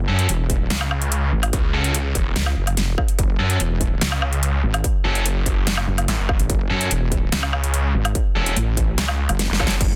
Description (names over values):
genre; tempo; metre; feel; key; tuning
heavy wobble dubstep; 145 BPM; 4/4; half-time; F# minor; A4 = 440 Hz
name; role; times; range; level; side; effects
wobble bass; bass; 0.0-10.0 s; E1 to F#2; -23 LUFS; equal; chorus, overdrive
distorted electric guitar; stabs; 0.1-9.7 s; C#4 to A4; -28 LUFS; equal; overdrive, dub echo
dubstep drum kit; drums; 0.2-9.9 s; crash cymbal, hi-hat, snare drum, woodblock; -26 LUFS; equal; none
electronic kick drum; drums; 0.5-9.9 s; none; -24 LUFS; equal; distortion
snarling distorted saw bass; bass; 0.7-9.8 s; E1 to C#2; -24 LUFS; equal; distortion, overdrive
room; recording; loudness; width
digital ambience; dense, heavily limited modern master; -21 LUFS; mono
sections
0.0-9.8 A section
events
drop 0.0-9.8; drum fill 9.4-9.8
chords
0.0 F#m